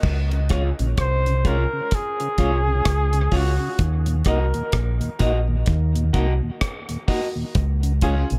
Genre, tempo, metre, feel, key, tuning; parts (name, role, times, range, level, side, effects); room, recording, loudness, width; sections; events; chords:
dub reggae; 64 BPM; 4/4; swing 60% on 16ths; Db major; A4 = 441 Hz
deep dub fingered electric bass; bass; 0.0-8.4 s; Bb1 to Eb2; -23 LUFS; equal
deep reggae drum kit; drums; 0.0-8.4 s; crash cymbal, hi-hat, kick drum, rim click; -26 LUFS; equal
mellow tonewheel organ; accompaniment; 0.3-8.4 s; Eb2 to Gb4; -33 LUFS; equal; overdrive, chorus vibrato, slow rotary speaker, dub echo
electric guitar through a small old amp; accompaniment; 0.5-8.2 s; F4 to Eb5; -33 LUFS; equal; lush chorus, dub echo
warm flugelhorn; melody; 1.0-4.8 s; Gb4 to C5; -28 LUFS; equal; dub echo
bright concert grand piano; stabs; 8.0-8.3 s; Db4 to Ab4; -35 LUFS; equal; dub echo
studio ambience; -22 LUFS; mono
0.0-8.4 A section
break 0.0-7.6
0.0 Db; 3.8 Ebm; 7.6 Db